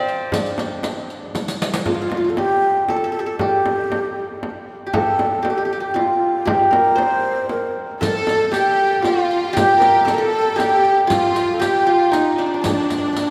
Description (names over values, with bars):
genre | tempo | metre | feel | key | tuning
Arabic maqam ensemble | 117 BPM | 3/4 | straight | unclear | A4 = 440 Hz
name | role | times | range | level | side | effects
qanun | melody | 0.0-13.3 s | D4 to G5 | -20 LUFS | equal | none
riq | percussion | 0.1-1.9, 8.0-13.3 s | none | -31 LUFS | equal | none
frame drum | percussion | 0.3-13.3 s | none | -29 LUFS | equal | none
breathy ney | second line | 1.9-13.3 s | D4 to D5 | -25 LUFS | equal | none
rich studio violin section | second line | 8.0-13.3 s | D4 to A4 | -26 LUFS | equal | none
room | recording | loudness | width
wet cathedral reverb, RT60 4.0 s | recorded in a church or concert hall | -18 LUFS | mono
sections
0.0-1.9 A section; 1.9-13.3 B section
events
drum fill 1.3-1.9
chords
none